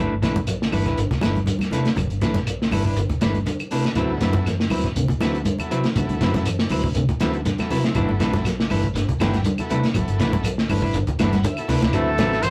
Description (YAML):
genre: afrobeat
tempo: 120 BPM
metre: 4/4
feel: swing 54% on 16ths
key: unclear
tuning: A4 = 440 Hz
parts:
  - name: clean electric guitar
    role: arpeggios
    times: 0.0-12.5 s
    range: C3 to F#3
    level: -31 LUFS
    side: equal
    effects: none
  - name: semi-hollow electric guitar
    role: stabs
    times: 0.0-12.3 s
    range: F#3 to B4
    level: -28 LUFS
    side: equal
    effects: none
  - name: fingered electric bass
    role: bass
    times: 0.0-12.5 s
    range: G1 to F#2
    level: -28 LUFS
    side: equal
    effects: none
  - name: cloth-damped thuddy drum kit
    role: drums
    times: 0.2-12.5 s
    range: hi-hat, kick drum, snare drum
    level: -27 LUFS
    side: equal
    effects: none
  - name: shekere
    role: percussion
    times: 0.2-12.5 s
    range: none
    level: -33 LUFS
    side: equal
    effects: none
  - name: congas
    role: percussion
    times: 0.4-12.3 s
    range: none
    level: -29 LUFS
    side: equal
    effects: none
  - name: claves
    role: percussion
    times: 0.5-12.5 s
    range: none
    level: -37 LUFS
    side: equal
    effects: none
  - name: overdriven combo organ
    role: accompaniment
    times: 4.0-12.5 s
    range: F#3 to A5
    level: -34 LUFS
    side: equal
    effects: none
  - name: growling trumpet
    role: melody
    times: 11.9-12.5 s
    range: A4 to C5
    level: -25 LUFS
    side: equal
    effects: none
  - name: breathy tenor saxophone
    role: second line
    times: 12.0-12.5 s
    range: A3 to C4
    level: -29 LUFS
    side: equal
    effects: none
room: moderate small room ambience, RT60 0.5 s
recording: rough rehearsal-room recording, warm saturation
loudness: -22 LUFS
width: mono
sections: 0.0-11.9 A section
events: transistor combo organ fill 10.9-11.9; drum fill 11.2-11.9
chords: 0.0 G69; 4.0 D13; 8.0 G69; 11.9 D13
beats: 0.48 0.98 1.47 | 1.97 2.47 2.97 3.47 | 3.97 4.47 4.97 5.46 | 5.96 6.46 6.96 7.46 | 7.96 8.46 8.95 9.45 | 9.95 10.45 10.95 11.44 | 11.94 12.44